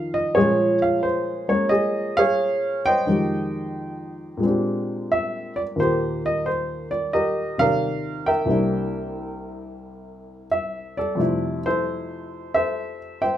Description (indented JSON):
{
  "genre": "solo jazz",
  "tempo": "89 BPM",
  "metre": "4/4",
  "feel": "swing 68% on 8ths",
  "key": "unclear",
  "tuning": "A4 = 435 Hz",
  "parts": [
    { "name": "warm baby grand piano", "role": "solo", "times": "0.0-13.4 s", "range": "C2 to G5", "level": "-21 LUFS", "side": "equal", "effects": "none" }
  ],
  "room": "moderate club reverb, RT60 0.8 s",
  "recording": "minimal, uncompressed stereo recording",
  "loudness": "-20 LUFS",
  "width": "side -11 dB against mid",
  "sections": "0.0-13.4 A section",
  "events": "none",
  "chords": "0.4 Bbm7; 3.1 Fm9; 4.4 Bb13; 5.8 Ebmaj7; 8.5 C9; 11.2 Fmaj7"
}